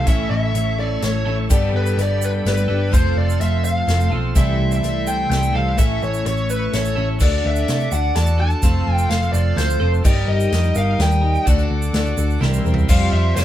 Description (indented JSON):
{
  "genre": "folk rock and heartland rock",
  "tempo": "126 BPM",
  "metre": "3/4",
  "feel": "straight",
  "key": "unclear",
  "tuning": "A4 = 439 Hz",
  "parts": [
    { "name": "smooth overdriven lead guitar", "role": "melody", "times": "0.0-13.4 s", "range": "B4 to A5", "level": "-24 LUFS", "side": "right 1 dB", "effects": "none" },
    { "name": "picked twelve-string acoustic guitar", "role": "accompaniment", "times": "0.0-13.4 s", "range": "A2 to C5", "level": "-26 LUFS", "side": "left 4 dB", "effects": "none" },
    { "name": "bright tonewheel organ", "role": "sustained chords", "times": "0.0-13.4 s", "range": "G4 to Eb6", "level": "-31 LUFS", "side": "equal", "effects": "slow rotary speaker, overdrive" },
    { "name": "twelve-string electric guitar", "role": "riff", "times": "0.0-13.4 s", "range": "A2 to C5", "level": "-26 LUFS", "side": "right 1 dB", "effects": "none" },
    { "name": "hollow-body short-scale picked electric bass", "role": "bass", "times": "0.0-13.4 s", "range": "F1 to C3", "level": "-19 LUFS", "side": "equal", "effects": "none" },
    { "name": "natural country drum kit", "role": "drums", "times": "0.1-13.4 s", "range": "crash cymbal, hi-hat, kick drum, ride cymbal, snare drum, toms", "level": "-20 LUFS", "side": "equal", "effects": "none" },
    { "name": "egg shaker", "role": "percussion", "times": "1.5-13.4 s", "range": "none", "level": "-34 LUFS", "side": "right 8 dB", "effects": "none" }
  ],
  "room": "moderate studio reverb, RT60 0.7 s",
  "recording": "band playing live in one room",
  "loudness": "-16 LUFS",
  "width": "side -12 dB against mid",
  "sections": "0.0-7.2 A section; 7.2-12.9 B section",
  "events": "drum fill 12.4-12.9",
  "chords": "0.1 A; 1.5 Gadd9; 2.9 F; 4.4 C6; 5.8 A; 7.2 D; 8.6 F; 10.0 Eb/G; 11.5 D; 12.4 C7; 12.9 Fsus2"
}